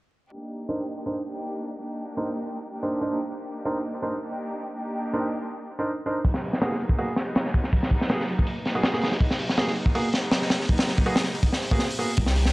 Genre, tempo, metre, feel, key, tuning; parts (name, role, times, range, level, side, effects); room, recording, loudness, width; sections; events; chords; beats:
drum and bass, jungle; 162 BPM; 4/4; swing 53% on 16ths; A4 = 440 Hz
clear studio string section; sustained chords; 0.3-12.5 s; Gb3 to G4; -32 LUFS; equal
bright grand piano; stabs; 0.7-12.1 s; Bb3 to C5; -29 LUFS; right 1 dB; low-pass filter, dub echo
crunchy breakbeat drum kit; drums; 6.2-12.5 s; hi-hat, kick drum, snare drum; -23 LUFS; equal
swell; sound effects; 11.6-12.2 s; -38 LUFS; right 1 dB
long sustained 808-style bass; bass; 12.2-12.5 s; C2; -21 LUFS; equal
light reverb, studio reverb; dry, gritty hardware recording, vinyl crackle, low-pass filter; -23 LUFS; side -21 dB against mid
0.3-12.2 A section
filter sweep on grand piano 0.3-12.2; filter sweep 0.3-12.2; swell 11.6-12.2
0.3 Cm9; 6.2 Abm9
| 0.32 0.69 1.06 1.43 | 1.80 2.17 2.54 2.91 | 3.28 3.65 4.02 4.39 | 4.76 5.13 5.51 5.88 | 6.25 6.62 6.99 7.36 | 7.73 8.10 8.47 8.84 | 9.21 9.58 9.95 10.32 | 10.69 11.06 11.43 11.80 | 12.17